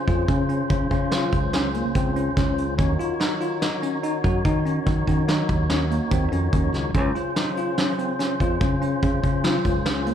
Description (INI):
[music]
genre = progressive instrumental, band music in an uneven meter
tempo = 144 BPM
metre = 5/4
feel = straight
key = Db major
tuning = A4 = 438 Hz
[part]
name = tonewheel organ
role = accompaniment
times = 0.0-10.1 s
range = Db3 to Db5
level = -28 LUFS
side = equal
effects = overdrive, fast rotary speaker, slapback echo
[part]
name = bell-like tine electric piano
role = arpeggios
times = 0.1-10.1 s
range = Bb3 to Gb4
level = -27 LUFS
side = left 1 dB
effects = medium stereo tremolo, slapback echo
[part]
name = fingered electric bass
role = bass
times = 0.1-10.1 s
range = Db2 to Eb3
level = -24 LUFS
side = equal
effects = none
[part]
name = vintage brush drum kit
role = drums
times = 0.1-10.1 s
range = hi-hat, kick drum, snare drum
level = -24 LUFS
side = equal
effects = none
[sound]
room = light reverb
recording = live gig heard through the venue's PA, club reverb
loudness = -20 LUFS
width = side -9 dB against mid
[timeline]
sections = 0.0-10.1 A section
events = none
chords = 0.0 Dbmaj7; 2.8 Ebm7; 6.9 Dbmaj7